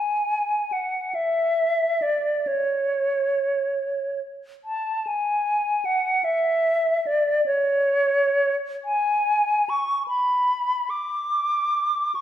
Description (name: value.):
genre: classical, free, expressive piece for unaccompanied flute.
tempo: 41-51 BPM (dotted quarters).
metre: 6/8.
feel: rubato.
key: unclear.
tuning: A4 = 440 Hz.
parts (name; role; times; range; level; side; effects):
silver concert flute; solo; 0.0-12.2 s; C#5 to D6; -21 LUFS; equal; none.
room: wet recital hall reverb, RT60 1.5 s.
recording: heard from further back in the room.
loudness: -21 LUFS.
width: side -11 dB against mid.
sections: 0.0-12.2 A section.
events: none.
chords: none.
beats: 1.17 | 2.47 3.77 | 5.05 6.26 | 7.48 8.87 | 10.09 11.33.